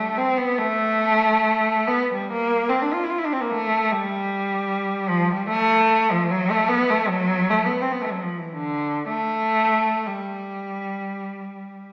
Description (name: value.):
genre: classical, free, expressive piece for unaccompanied cello.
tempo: 51-78 BPM.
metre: 4/4.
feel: rubato.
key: unclear.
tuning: A4 = 440 Hz.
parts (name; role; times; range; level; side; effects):
rich cello; solo; 0.0-11.9 s; D3 to F4; -22 LUFS; equal; none.
room: wet stone room reverb, RT60 1.4 s.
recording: heard from further back in the room, small speaker sound.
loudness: -22 LUFS.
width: mono.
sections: 0.0-11.9 A section.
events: none.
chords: none.